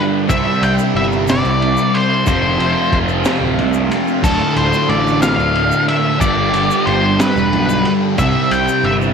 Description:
psychedelic rock; 61 BPM (dotted quarters); 6/8; straight; A4 = 440 Hz
warm studio string section; sustained chords; 0.0-9.1 s; G3 to G4; -25 LUFS; right 11 dB
fuzz guitar; riff; 0.0-9.1 s; D2 to C4; -16 LUFS; equal; distortion, phaser
octave-fuzz lead guitar; melody; 0.3-8.9 s; A4 to G5; -18 LUFS; left 1 dB; distortion, slapback echo
fuzz picked electric bass; bass; 0.3-9.1 s; D1 to C2; -21 LUFS; equal; overdrive
crunchy breakbeat drum kit; drums; 0.3-9.0 s; crash cymbal, kick drum, ride cymbal, snare drum; -22 LUFS; equal
egg shaker; percussion; 0.3-9.1 s; -35 LUFS; left 14 dB
light reverb, small room ambience; 1960s-style stereo with parts hard left and right; -13 LUFS; side -6 dB against mid
0.0-9.1 A section
0.3 Cadd9; 2.3 F6; 4.2 Dm; 6.2 G; 8.2 Cadd9

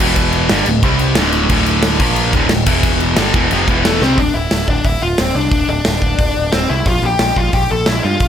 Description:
punk rock; 179 BPM; 4/4; straight; D minor; A4 = 442 Hz
distorted electric guitar; riff; 0.0-4.2 s; D2 to C4; -15 LUFS; equal; overdrive
growling picked electric bass; bass; 0.0-8.3 s; D1 to G2; -19 LUFS; equal; overdrive
big rock drum kit; drums; 0.0-8.3 s; crash cymbal, hi-hat, kick drum, snare drum; -16 LUFS; equal
bluesy overdriven lead guitar; melody; 3.9-8.3 s; A3 to A5; -17 LUFS; left 3 dB; distortion
light reverb; -12 LUFS; side -9 dB against mid
0.0-4.2 A section; 4.2-8.3 B section
drum fill 4.0
0.0 E5; 0.5 D5; 0.8 C5; 1.2 D5; 2.0 Bb5; 2.3 D5; 2.7 E5; 3.2 Dm; 3.7 E5; 4.0 C5; 4.2 N.C.; 6.9 Bb5

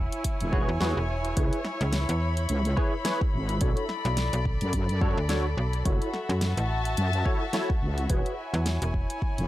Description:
glitch hop; 107 BPM; 4/4; swing 57% on 16ths; F# minor; A4 = 441 Hz
slap-like FM bass; bass; 0.0-9.1 s; E1 to F#2; -27 LUFS; equal
warm chamber string section; texture; 0.0-9.5 s; E4 to B5; -32 LUFS; left 2 dB; sidechain pumping
pop drum kit; drums; 0.1-9.5 s; hi-hat, snare drum; -33 LUFS; equal; small room ambience
electronic kick drum; drums; 0.2-9.3 s; -27 LUFS; equal; small room ambience
wobble bass; bass; 0.4-9.5 s; E1 to F#2; -27 LUFS; equal; chorus, tube saturation
barky tine electric piano; stabs; 0.5-8.3 s; D4 to C#5; -33 LUFS; equal; ensemble chorus, sidechain pumping, analog delay
light reverb; dry, gritty hardware recording; -24 LUFS; side -15 dB against mid
0.0-9.5 A section
0.0 E6; 1.4 C#m7; 3.6 Bm7; 5.9 F#m7; 8.1 E6

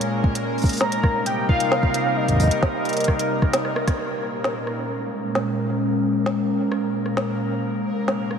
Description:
IDM; 132 BPM; 4/4; straight; Bb dorian; A4 = 440 Hz
warbly tape-like pad; sustained chords; 0.0-8.4 s; Bb2 to Bb4; -23 LUFS; equal; chorus, built-in reverb
organic electronic drum kit; drums; 0.0-8.4 s; hi-hat, rim click, snare drum; -28 LUFS; equal; small room ambience, analog delay
bubbling stepped-filter texture; texture; 0.0-8.4 s; Bb3 to Bb4; -32 LUFS; left 1 dB; chorus, built-in reverb
electronic kick drum; drums; 0.2-4.0 s; -19 LUFS; equal; small room ambience
warm velvety synth lead; melody; 0.8-3.1 s; Eb5 to Bb5; -27 LUFS; equal; chorus, tremolo, diffuse ambient delay
wet cathedral reverb, RT60 6.9 s; dreamy mix soaked in reverb; -20 LUFS; side -7 dB against mid
0.0-4.0 A section; 4.0-8.4 B section
drum fill 3.6-4.0; band accent 3.9; filter sweep on ambient pad 4.0-8.4
0.4 Cm7; 4.0 Bbm7; 7.6 Cm7

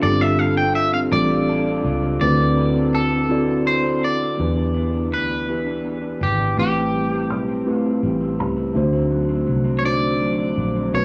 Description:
R&B; 55 BPM (dotted quarters); 6/8; straight; A4 = 439 Hz
electric guitar at the edge of break-up; melody; 0.0-11.0 s; G4 to G5; -26 LUFS; equal
electric guitar at the edge of break-up; second line; 0.0-11.0 s; A2 to B4; -29 LUFS; equal; cassette tape
mellow tine electric piano; accompaniment; 0.0-11.0 s; A3 to D5; -24 LUFS; equal; cassette tape
vintage muted fingered electric bass; bass; 0.0-11.0 s; G1 to E2; -26 LUFS; equal
light reverb; home recording on cassette, small room reverb; -20 LUFS; mono
0.0-4.4 A section; 4.4-11.0 B section
0.0 G9sus4; 2.2 D13; 4.4 Em7; 6.6 Am7; 8.7 D7b9

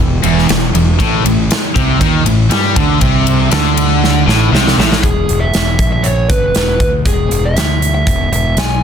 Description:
hard rock; 119 BPM; 4/4; straight; A4 = 440 Hz
cranked stack guitar; riff; 0.0-5.0 s; E2 to G3; -17 LUFS; left 11 dB; overdrive
heavy high-gain guitar; riff; 0.0-5.0 s; E2 to G3; -19 LUFS; left 1 dB; distortion
overdriven semi-hollow guitar; riff; 0.0-5.0 s; E2 to G3; -16 LUFS; right 9 dB
fuzz fingered electric bass; bass; 0.0-8.8 s; E1 to G2; -15 LUFS; equal; overdrive
big rock drum kit; drums; 0.2-8.7 s; hi-hat, kick drum, ride cymbal, snare drum; -15 LUFS; equal
lead guitar through a small cranked amp; melody; 5.0-8.8 s; G#4 to G#5; -17 LUFS; right 1 dB; overdrive
light reverb, studio ambience; dense, heavily limited modern master; -10 LUFS; side -8 dB against mid
0.0-5.0 A section; 5.0-8.8 B section
drum fill 4.0-5.0
0.0 N.C.; 1.0 Amadd11; 5.0 E

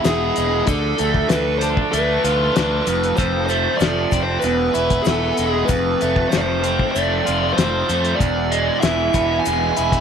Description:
psychedelic rock; 96 BPM; 4/4; straight; E phrygian dominant; A4 = 440 Hz
fuzz lead guitar; melody; 0.0-10.0 s; G#4 to G#5; -21 LUFS; equal; distortion, tape echo
bright studio string section; sustained chords; 0.0-10.0 s; E3 to G#5; -31 LUFS; right 12 dB
overdriven electric guitar; riff; 0.0-10.0 s; E2 to F4; -20 LUFS; equal; phaser
cloth-damped thuddy drum kit; drums; 0.0-10.0 s; hi-hat, kick drum, snare drum; -21 LUFS; left 3 dB
egg shaker; percussion; 0.0-9.9 s; -40 LUFS; left 17 dB
fuzz fingered electric bass; bass; 0.1-10.0 s; E1 to F2; -24 LUFS; equal; overdrive
small room ambience; 1960s-style stereo with parts hard left and right; -16 LUFS; side -7 dB against mid
0.0-10.0 A section
0.0 E; 0.7 Dm; 2.9 F; 4.4 E; 5.7 F; 8.2 E

